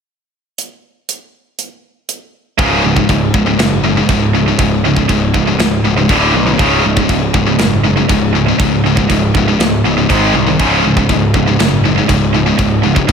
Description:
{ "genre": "heavy metal", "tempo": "120 BPM", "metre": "4/4", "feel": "straight", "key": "unclear", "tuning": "A4 = 440 Hz", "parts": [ { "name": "tight metal drum kit", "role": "drums", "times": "0.6-13.1 s", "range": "china cymbal, hi-hat, kick drum, snare drum", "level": "-18 LUFS", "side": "equal", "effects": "none" }, { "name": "heavy high-gain guitar", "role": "riff", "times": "2.6-13.1 s", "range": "C#2 to G#3", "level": "-14 LUFS", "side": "left 7 dB", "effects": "distortion, slapback echo" }, { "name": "tight distorted guitar", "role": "riff", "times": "2.6-13.1 s", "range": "C#2 to G#3", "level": "-16 LUFS", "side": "right 10 dB", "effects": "distortion" }, { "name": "fuzz picked electric bass", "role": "bass", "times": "2.6-13.1 s", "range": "C#1 to B#1", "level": "-17 LUFS", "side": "equal", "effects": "overdrive" } ], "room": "moderate lush hall reverb, RT60 1.6 s, small room ambience", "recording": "big arena sound", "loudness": "-10 LUFS", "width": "side -6 dB against mid", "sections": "0.6-2.6 A section; 2.6-13.1 B section", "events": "none", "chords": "0.6 N.C.; 2.6 C#5; 6.1 D5; 6.6 C#5; 10.1 G#5; 10.6 C#5" }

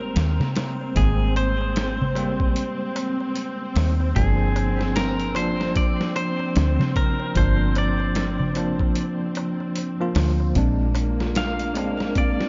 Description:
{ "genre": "trip hop", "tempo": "75 BPM", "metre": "4/4", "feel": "swing 60% on 16ths", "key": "unclear", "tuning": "A4 = 441 Hz", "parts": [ { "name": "clean electric guitar", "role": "melody", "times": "0.0-12.5 s", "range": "Ab4 to F5", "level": "-32 LUFS", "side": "equal", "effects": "tape echo" }, { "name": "bell-like tine electric piano", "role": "accompaniment", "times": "0.0-12.5 s", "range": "F3 to F4", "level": "-29 LUFS", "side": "equal", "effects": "tremolo, vintage 12-bit sampler grit, tape echo" }, { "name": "warm studio string section", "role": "sustained chords", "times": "0.0-12.5 s", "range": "Bb3 to C4", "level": "-33 LUFS", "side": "equal", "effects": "none" }, { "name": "darbuka", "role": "percussion", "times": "0.0-12.4 s", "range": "none", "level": "-32 LUFS", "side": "equal", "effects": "none" }, { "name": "impact", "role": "sound effects", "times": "0.0-1.0 s", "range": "none", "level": "-59 LUFS", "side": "equal", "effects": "none" }, { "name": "deep dub fingered electric bass", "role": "bass", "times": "0.2-12.1 s", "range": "G1 to Eb2", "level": "-25 LUFS", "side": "equal", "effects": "none" }, { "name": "boom bap sampler-style drum kit", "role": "drums", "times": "0.2-12.5 s", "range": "hi-hat, kick drum, snare drum", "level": "-29 LUFS", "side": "equal", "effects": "none" }, { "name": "felt-muted upright piano", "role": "arpeggios", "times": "10.6-12.5 s", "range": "C4 to F4", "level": "-33 LUFS", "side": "equal", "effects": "lush chorus, tape echo" } ], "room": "moderate plate reverb, RT60 3.4 s", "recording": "dreamy mix soaked in reverb, nothing above 7.5 kHz", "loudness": "-23 LUFS", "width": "mono", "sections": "0.0-12.5 A section", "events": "impact 0.0-1.0", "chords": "0.0 Abmaj7; 4.2 Gm7; 10.6 Bb7" }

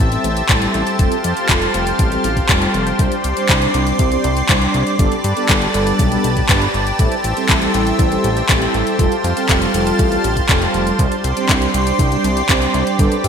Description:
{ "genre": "italo disco", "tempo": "120 BPM", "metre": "4/4", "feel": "straight", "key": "unclear", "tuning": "A4 = 440 Hz", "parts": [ { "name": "lush unison pad", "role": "sustained chords", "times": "0.0-13.3 s", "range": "G4 to C6", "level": "-20 LUFS", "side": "equal", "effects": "chorus" }, { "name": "mellow synth brass", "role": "stabs", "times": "0.0-13.1 s", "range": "G3 to C5", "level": "-20 LUFS", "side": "right 1 dB", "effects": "chorus, cassette tape, ping-pong delay" }, { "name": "fat analog bass", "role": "bass", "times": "0.0-13.3 s", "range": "F1 to G2", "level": "-21 LUFS", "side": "equal", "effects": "none" }, { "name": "house drum kit", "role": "drums", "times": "0.1-13.3 s", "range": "handclaps, hi-hat", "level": "-20 LUFS", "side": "left 1 dB", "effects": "overdrive, gated reverb" }, { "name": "electronic kick drum", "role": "drums", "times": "0.5-13.1 s", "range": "none", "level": "-17 LUFS", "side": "equal", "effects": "none" } ], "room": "moderate lush hall reverb, RT60 2.3 s", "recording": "bright 1980s-style digital production", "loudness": "-13 LUFS", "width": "side -7 dB against mid", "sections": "0.0-13.3 A section", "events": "none", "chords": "0.0 Am7; 1.0 Fadd9; 3.0 Csus2; 5.0 Gadd9; 7.0 Am7; 9.0 Fadd9; 11.0 Csus2" }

